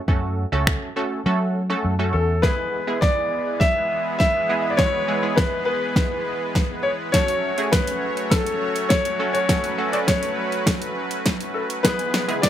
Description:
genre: dance-pop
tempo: 102 BPM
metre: 4/4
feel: straight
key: unclear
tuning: A4 = 440 Hz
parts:
  - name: funky polysynth comp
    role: accompaniment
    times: 0.1-12.5 s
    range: G#3 to A4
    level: -27 LUFS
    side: right 2 dB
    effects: chorus, sidechain pumping, plate reverb
  - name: vintage muted fingered electric bass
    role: bass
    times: 0.1-2.4 s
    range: C#2 to F#3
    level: -22 LUFS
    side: equal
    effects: sidechain pumping
  - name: smooth R&B drum kit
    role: drums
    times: 0.1-12.5 s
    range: finger snaps, hi-hat, kick drum, snare drum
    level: -21 LUFS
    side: equal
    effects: none
  - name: warm concert grand piano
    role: melody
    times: 2.1-12.5 s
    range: A4 to E5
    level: -23 LUFS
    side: left 2 dB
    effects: plate reverb
  - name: soft supersaw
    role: sustained chords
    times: 2.4-12.5 s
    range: E3 to B4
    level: -28 LUFS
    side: equal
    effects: sidechain pumping, plate reverb
  - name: riser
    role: sound effects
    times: 12.2-12.5 s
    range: none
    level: -38 LUFS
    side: right 1 dB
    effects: none
room: light reverb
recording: high-pass filter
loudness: -19 LUFS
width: side -10 dB against mid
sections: 0.0-2.4 A section; 2.4-12.5 B section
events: silent gap 1.3-2.4; build-up 2.4-12.5; drum fill 2.4-12.5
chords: 0.0 F#m; 2.4 E; 7.1 F#m; 11.8 E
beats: | 0.08 0.67 1.26 1.85 | 2.43 3.02 3.61 4.20 | 4.79 5.38 5.96 6.55 | 7.14 7.73 8.32 8.90 | 9.49 10.08 10.67 11.26 | 11.85 12.43

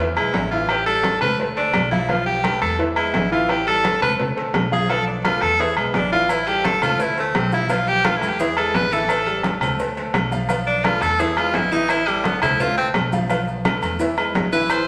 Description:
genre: latin, salsa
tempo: 171 BPM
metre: 4/4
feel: straight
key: A minor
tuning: A4 = 440 Hz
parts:
  - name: bright upright piano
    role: accompaniment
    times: 0.0-14.8 s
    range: E3 to F5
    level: -28 LUFS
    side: equal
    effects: none
  - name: upright bass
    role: bass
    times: 0.0-14.9 s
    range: A1 to E2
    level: -31 LUFS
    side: equal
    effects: none
  - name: congas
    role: percussion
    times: 0.0-14.9 s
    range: none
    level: -30 LUFS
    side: equal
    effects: none
  - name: cowbell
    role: percussion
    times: 0.0-14.9 s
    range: none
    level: -32 LUFS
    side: equal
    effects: none
  - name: edgy tenor saxophone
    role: melody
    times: 0.2-14.9 s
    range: G3 to C5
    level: -23 LUFS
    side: equal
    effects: none
  - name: agogo bells and timbales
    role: percussion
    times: 0.2-14.9 s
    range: none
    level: -27 LUFS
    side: equal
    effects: none
  - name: maracas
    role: percussion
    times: 6.3-14.9 s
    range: none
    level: -48 LUFS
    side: equal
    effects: none
room: wet large studio reverb, RT60 1.2 s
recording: none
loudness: -20 LUFS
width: mono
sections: 0.0-14.9 A section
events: tenor saxophone solo 0.0-14.9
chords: 0.0 E; 0.7 Am7; 1.4 Dm7; 2.1 G13/B; 2.8 E; 3.5 Am7; 4.2 Dm7; 4.9 Bm7b5; 5.6 E; 6.3 Am7; 7.0 Dm7; 7.7 G13/B; 8.4 E; 9.1 Am7; 9.8 Dm7; 10.5 Bm7b5; 11.2 E; 11.9 Am7; 12.6 Dm7; 13.3 Fmaj7#11/B; 14.0 E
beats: 0.34 | 0.69 1.04 1.39 1.74 | 2.09 2.44 2.79 3.15 | 3.50 3.85 4.20 4.55 | 4.90 5.25 5.60 5.95 | 6.30 6.65 7.00 7.35 | 7.70 8.05 8.40 8.75 | 9.10 9.45 9.80 10.15 | 10.50 10.85 11.20 11.55 | 11.90 12.25 12.60 12.95 | 13.30 13.65 14.00 14.35 | 14.70

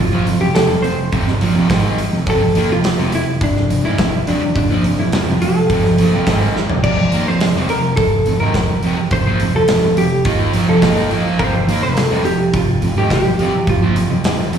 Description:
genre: quiet-loud alternative rock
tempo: 105 BPM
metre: 4/4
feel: straight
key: F major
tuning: A4 = 440 Hz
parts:
  - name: vintage hollow-body jazz guitar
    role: melody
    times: 0.0-14.6 s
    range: D4 to D5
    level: -19 LUFS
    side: left 1 dB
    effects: slapback echo, plate reverb
  - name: fuzz guitar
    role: riff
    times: 0.0-14.6 s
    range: F2 to Eb4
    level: -18 LUFS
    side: right 1 dB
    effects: distortion, slapback echo
  - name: overdriven fingered electric bass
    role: bass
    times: 0.0-14.6 s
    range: F1 to Eb2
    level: -19 LUFS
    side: right 2 dB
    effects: none
  - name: big rock drum kit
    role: drums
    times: 0.3-14.6 s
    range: crash cymbal, hi-hat, kick drum, snare drum, toms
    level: -19 LUFS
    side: right 1 dB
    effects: none
room: light reverb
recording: live gig heard through the venue's PA, recital hall reverb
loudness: -13 LUFS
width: side -8 dB against mid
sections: 0.0-14.6 A section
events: drum fill 6.6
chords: 0.0 F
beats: 0.56 1.13 1.70 | 2.28 2.85 3.42 3.99 | 4.56 5.13 5.70 6.27 | 6.84 7.41 7.98 8.55 | 9.12 9.69 10.26 10.83 | 11.40 11.96 12.53 13.10 | 13.67 14.24

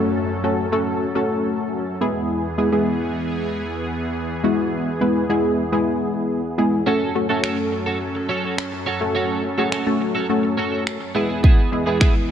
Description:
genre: dance-pop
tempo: 105 BPM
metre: 4/4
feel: straight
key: F# minor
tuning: A4 = 440 Hz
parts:
  - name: funky polysynth comp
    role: accompaniment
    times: 0.0-12.3 s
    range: G#3 to B4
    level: -20 LUFS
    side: left 1 dB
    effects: chorus, sidechain pumping
  - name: filtered supersaw swell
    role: sustained chords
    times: 0.0-12.3 s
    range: E2 to A4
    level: -26 LUFS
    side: equal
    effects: sidechain pumping
  - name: downlifter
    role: sound effects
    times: 0.0-2.3 s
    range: none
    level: -41 LUFS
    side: left 1 dB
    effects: none
  - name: twelve-string electric guitar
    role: riff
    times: 6.9-12.3 s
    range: B3 to A4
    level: -26 LUFS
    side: right 4 dB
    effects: analog chorus
  - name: pop drum kit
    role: drums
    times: 7.4-12.1 s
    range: finger snaps, kick drum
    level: -17 LUFS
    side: equal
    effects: none
room: light reverb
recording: dark, warm production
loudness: -19 LUFS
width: side -9 dB against mid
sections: 0.0-12.3 A section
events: none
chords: 0.0 F#m; 2.0 E; 6.9 F#m; 11.2 E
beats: | 0.01 0.58 1.15 1.73 | 2.30 2.87 3.44 4.01 | 4.58 5.15 5.72 6.30 | 6.87 7.44 8.01 8.58 | 9.15 9.72 10.30 10.87 | 11.44 12.01

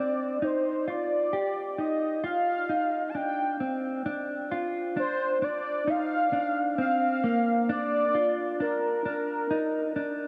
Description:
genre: dream pop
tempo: 66 BPM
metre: 4/4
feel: straight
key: Bb major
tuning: A4 = 440 Hz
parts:
  - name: warm velvety synth lead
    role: melody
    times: 0.0-10.3 s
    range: Bb4 to A5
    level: -30 LUFS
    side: equal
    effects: chorus, digital delay
  - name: mellow electric guitar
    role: arpeggios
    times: 0.0-10.3 s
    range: Bb3 to G4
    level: -32 LUFS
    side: equal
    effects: subtle chorus, digital delay
room: wet huge ambient reverb, RT60 4.6 s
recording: none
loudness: -28 LUFS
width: mono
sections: 0.0-4.1 A section; 4.1-10.3 B section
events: none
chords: 0.4 Fsus2; 4.1 Bb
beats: | 0.42 1.33 2.24 3.15 | 4.05 4.96 5.87 6.78 | 7.69 8.60 9.51

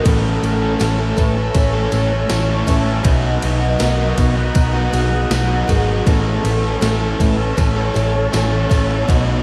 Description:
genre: rock, shoegaze and dream pop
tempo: 80 BPM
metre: 4/4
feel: straight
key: unclear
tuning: A4 = 441 Hz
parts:
  - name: pure breathy sine lead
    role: melody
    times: 0.0-9.4 s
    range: G#4 to E5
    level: -27 LUFS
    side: equal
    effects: chorus, phaser, analog delay
  - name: evolving wavetable pad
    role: sustained chords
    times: 0.0-9.4 s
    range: B3 to E6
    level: -32 LUFS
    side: equal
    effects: none
  - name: picked twelve-string acoustic guitar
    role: arpeggios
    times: 0.0-9.4 s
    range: G#4 to B4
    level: -33 LUFS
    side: equal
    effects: none
  - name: biting overdriven guitar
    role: riff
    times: 0.0-9.4 s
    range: A2 to A4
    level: -25 LUFS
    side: equal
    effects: lush chorus
  - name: overdriven semi-hollow guitar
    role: riff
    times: 0.0-9.4 s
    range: A2 to A4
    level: -25 LUFS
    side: equal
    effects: reverse reverb
  - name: hollow-body short-scale picked electric bass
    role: bass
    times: 0.1-9.4 s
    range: G#1 to B1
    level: -21 LUFS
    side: equal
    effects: none
  - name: gated 80s digital drum machine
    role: drums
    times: 0.1-9.3 s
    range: kick drum, ride cymbal, snare drum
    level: -23 LUFS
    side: equal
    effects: gated reverb, gated reverb snare
  - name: tambourine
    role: percussion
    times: 0.1-9.2 s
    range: none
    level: -39 LUFS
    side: equal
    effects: none
room: wet lush hall reverb, RT60 2.8 s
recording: dreamy mix soaked in reverb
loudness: -17 LUFS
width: mono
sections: 0.0-9.4 A section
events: none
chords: 0.0 Amaj7; 3.0 Bmaj7; 6.1 Amaj7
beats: | 0.05 0.80 1.55 2.30 | 3.05 3.80 4.55 5.31 | 6.06 6.81 7.57 8.32 | 9.07

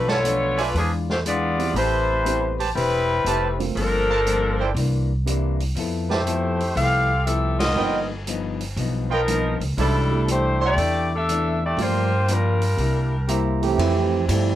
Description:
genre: jazz, big band swing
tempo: 120 BPM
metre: 4/4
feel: swing 67% on 8ths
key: C major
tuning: A4 = 440 Hz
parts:
  - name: clear saxophone section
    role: melody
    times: 0.0-13.3 s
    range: F3 to F5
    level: -22 LUFS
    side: left 1 dB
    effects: none
  - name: vintage hollow-body jazz guitar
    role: accompaniment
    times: 0.0-14.6 s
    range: G2 to B4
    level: -29 LUFS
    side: left 7 dB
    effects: cassette tape
  - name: upright bass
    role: bass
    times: 0.0-14.6 s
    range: E1 to G2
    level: -24 LUFS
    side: equal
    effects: none
  - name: warm trumpet section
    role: stabs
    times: 0.1-13.8 s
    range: C4 to C6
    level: -27 LUFS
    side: right 6 dB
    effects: cassette tape
  - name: swinging big-band drum kit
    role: drums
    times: 0.1-14.4 s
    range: hi-hat, ride cymbal, snare drum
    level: -32 LUFS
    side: right 1 dB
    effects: cassette tape
  - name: dark baby grand piano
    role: accompaniment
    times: 1.6-14.1 s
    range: F3 to F4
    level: -30 LUFS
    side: right 8 dB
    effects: cassette tape
  - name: warm trombone section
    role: second line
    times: 13.6-14.6 s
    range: E3 to G4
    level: -21 LUFS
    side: right 7 dB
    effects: cassette tape
room: moderate studio ambience, RT60 0.5 s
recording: home recording on cassette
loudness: -19 LUFS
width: side -12 dB against mid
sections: 0.0-13.8 A section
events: band accent 7.5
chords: 0.0 Bm7b5; 0.7 E7b9; 1.7 Am9; 3.8 Gm11; 4.8 C9; 5.8 Fmaj9#11; 7.8 G7alt; 9.8 C69; 11.8 Gm7; 12.8 C7; 13.8 Fmaj9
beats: 0.24 0.74 1.25 | 1.75 2.25 2.75 3.25 | 3.75 4.25 4.76 5.26 | 5.76 6.26 6.76 7.26 | 7.76 8.27 8.77 9.27 | 9.77 10.27 10.77 11.28 | 11.78 12.28 12.78 13.28 | 13.78 14.28

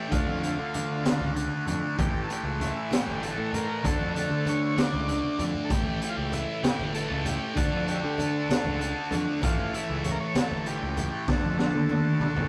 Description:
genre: psychedelic rock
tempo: 64 BPM (dotted quarters)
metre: 6/8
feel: straight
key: unclear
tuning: A4 = 440 Hz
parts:
  - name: combo organ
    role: melody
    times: 0.0-12.5 s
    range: E4 to D5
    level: -37 LUFS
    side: equal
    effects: none
  - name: thick fuzz guitar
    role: riff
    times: 0.0-12.5 s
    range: A2 to D4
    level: -32 LUFS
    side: equal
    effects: distortion, phaser
  - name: fuzz picked electric bass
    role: bass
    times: 0.1-12.5 s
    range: G1 to D3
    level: -34 LUFS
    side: equal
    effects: overdrive
  - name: raw garage drum kit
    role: drums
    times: 0.1-12.5 s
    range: hi-hat, kick drum, snare drum, toms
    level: -31 LUFS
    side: equal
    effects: none
  - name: congas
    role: percussion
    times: 0.1-12.5 s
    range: none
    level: -39 LUFS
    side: equal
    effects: none
room: moderate studio reverb, RT60 0.6 s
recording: rough rehearsal-room recording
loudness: -28 LUFS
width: mono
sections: 0.0-12.5 A section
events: drum fill 4.9-5.7, 11.3-12.5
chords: 0.1 Dm; 2.0 A; 3.8 Dm; 5.7 A; 7.6 Dm; 9.4 A; 11.3 Dm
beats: | 0.12 1.05 | 1.98 2.91 | 3.84 4.78 | 5.71 6.64 | 7.57 8.50 | 9.43 10.35 | 11.28 12.21

